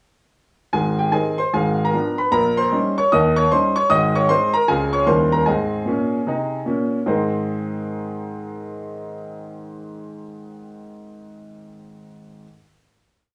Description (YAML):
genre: jazz, stride piano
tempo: 152 BPM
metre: 4/4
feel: swing 64% on 8ths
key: Ab major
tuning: A4 = 445 Hz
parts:
  - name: clear concert grand piano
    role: solo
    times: 0.7-12.4 s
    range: Ab1 to Eb6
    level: -21 LUFS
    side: equal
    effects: none
room: moderate club reverb, RT60 0.6 s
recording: small room ambience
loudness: -20 LUFS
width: mono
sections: 0.7-7.1 A section; 7.1-10.2 final chord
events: none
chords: 0.7 Ab; 1.5 Abdim7; 2.3 Eb7/Bb; 3.9 Ab; 4.7 Dbmaj7; 5.1 Eb7b9; 5.5 Ab